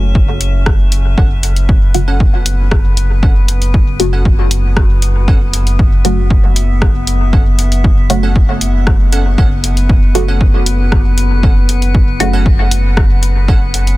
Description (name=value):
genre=dub techno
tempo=117 BPM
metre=4/4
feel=straight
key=F# minor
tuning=A4 = 438 Hz
part: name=filtered dub chord stab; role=stabs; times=0.0-14.0 s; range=C#3 to F#4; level=-21 LUFS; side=equal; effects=phaser, sidechain pumping, dub echo
part: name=round analog bass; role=bass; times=0.0-14.0 s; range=F#1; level=-14 LUFS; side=equal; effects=sidechain pumping
part: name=drifting glass-harmonics texture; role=texture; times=0.0-14.0 s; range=B3 to E5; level=-23 LUFS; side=left 4 dB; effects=chorus, built-in reverb, sidechain pumping
part: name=electronic kick drum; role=drums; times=0.2-13.6 s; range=none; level=-11 LUFS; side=equal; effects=none
part: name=punchy analog drum machine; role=drums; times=0.4-14.0 s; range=hi-hat, rim click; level=-20 LUFS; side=left 1 dB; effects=soft clipping on snare
part: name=wavetable chord stab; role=riff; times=1.2-13.6 s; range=C#4 to F#5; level=-27 LUFS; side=right 3 dB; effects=sidechain pumping, dub echo
room=little or no reverb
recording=dense, heavily limited modern master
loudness=-9 LUFS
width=side -18 dB against mid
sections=0.0-14.0 A section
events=none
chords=0.0 F#m